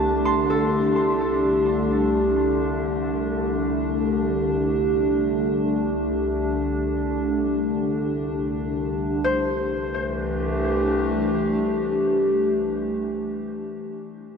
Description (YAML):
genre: ambient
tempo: free time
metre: none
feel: none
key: C major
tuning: A4 = 439 Hz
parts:
  - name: warbly tape-like pad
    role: sustained chords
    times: 0.0-12.8 s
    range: C2 to G4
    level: -21 LUFS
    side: equal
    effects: chorus, built-in reverb, phaser
  - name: Celtic harp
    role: arpeggios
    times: 0.0-2.9, 9.2-13.3 s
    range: B3 to C6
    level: -28 LUFS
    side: left 1 dB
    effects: ping-pong delay
room: wet huge ambient reverb, RT60 7.0 s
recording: dreamy mix soaked in reverb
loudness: -21 LUFS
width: side -6 dB against mid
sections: 0.0-9.2 A section; 9.2-12.0 B section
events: none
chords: 0.0 Am11/C; 3.7 Gsus24/C; 9.2 C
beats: free time